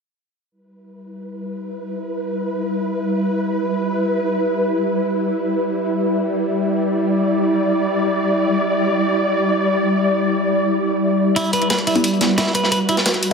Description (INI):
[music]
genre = dark technical drum and bass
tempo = free time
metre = none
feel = none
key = E minor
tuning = A4 = 436 Hz
[part]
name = swarming drone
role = sustained chords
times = 1.2-13.3 s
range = G3 to D5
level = -18 LUFS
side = equal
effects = built-in reverb
[part]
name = clean electric guitar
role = arpeggios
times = 11.4-13.0 s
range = E4 to B4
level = -20 LUFS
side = right 2 dB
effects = ping-pong delay
[part]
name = crunchy breakbeat drum kit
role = drums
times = 11.4-13.3 s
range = hi-hat, snare drum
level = -22 LUFS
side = equal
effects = high-pass filter on hats, studio reverb, high-pass filter on snare, high-pass filter on room
[part]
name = electronic hi-hat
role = drums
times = 11.4-13.3 s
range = none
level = -23 LUFS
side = left 2 dB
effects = overdrive, studio reverb
[part]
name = filtered dub chord stab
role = stabs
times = 12.0-12.3 s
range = G3 to E4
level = -21 LUFS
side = left 2 dB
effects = phaser, ping-pong delay
[sound]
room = moderate plate reverb, RT60 1.6 s, small room ambience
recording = none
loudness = -17 LUFS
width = side -5 dB against mid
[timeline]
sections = 0.5-13.3 A section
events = none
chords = 0.5 Em